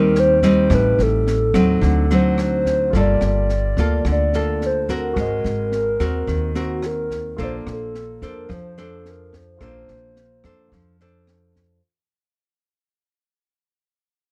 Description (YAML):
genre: bossa nova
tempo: 108 BPM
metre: 4/4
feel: straight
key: Bb major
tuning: A4 = 440 Hz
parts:
  - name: hollow clarinet-like synth lead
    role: melody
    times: 0.0-11.3 s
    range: Gb4 to D5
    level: -24 LUFS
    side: equal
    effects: chorus
  - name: nylon-string guitar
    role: accompaniment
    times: 0.0-11.8 s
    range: A2 to C5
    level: -24 LUFS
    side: equal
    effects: none
  - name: upright bass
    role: bass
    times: 0.0-11.8 s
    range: G1 to F2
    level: -25 LUFS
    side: equal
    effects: none
  - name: open jazz drum kit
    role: drums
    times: 0.1-11.6 s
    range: kick drum, rim click, snare drum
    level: -32 LUFS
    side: equal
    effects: none
  - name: warm baby grand piano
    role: accompaniment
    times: 2.9-11.9 s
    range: F4 to F5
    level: -37 LUFS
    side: equal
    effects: none
room: little or no reverb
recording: dry, close 1970s-style studio recording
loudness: -19 LUFS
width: mono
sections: 0.0-11.8 A section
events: fade-out 0.0-11.8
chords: 0.0 Abmaj7 (rootless); 0.7 Am7b5; 1.8 D7b9; 2.9 Gm9; 5.2 Ab9; 7.4 Bbmaj9